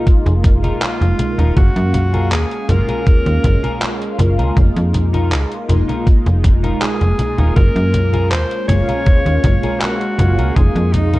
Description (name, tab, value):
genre	vaporwave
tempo	80 BPM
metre	4/4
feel	straight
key	Db major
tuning	A4 = 440 Hz
part	mellow synth brass	accompaniment	0.0-11.2 s	Ab3 to F5	-22 LUFS	equal	ensemble chorus, cassette tape, analog delay
part	clean electric guitar	riff	0.0-11.2 s	Eb4 to Bb4	-29 LUFS	left 2 dB	analog chorus, analog delay
part	detuned 8-bit digital drum machine	drums	0.1-11.2 s	congas, handclaps, hi-hat	-22 LUFS	equal	vintage 12-bit sampler grit, gated reverb
part	electronic kick drum	drums	0.1-10.7 s	none	-13 LUFS	equal	vintage 12-bit sampler grit
part	slap-like FM bass	bass	0.3-11.2 s	Eb1 to Gb2	-15 LUFS	equal	none
part	breathy alto saxophone	melody	0.8-11.2 s	Eb4 to Db5	-22 LUFS	equal	tape echo
room	digital ambience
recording	cassette tape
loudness	-13 LUFS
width	side -18 dB against mid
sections	0.0-11.2 A section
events	none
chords	0.0 Db69/F (rootless); 1.6 Gbmaj9; 4.6 Db69/F (rootless); 7.6 Gbmaj9; 10.6 Db69/F (rootless)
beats	0.07 0.82 | 1.57 2.32 3.07 3.82 | 4.57 5.32 6.07 6.82 | 7.57 8.32 9.07 9.82 | 10.57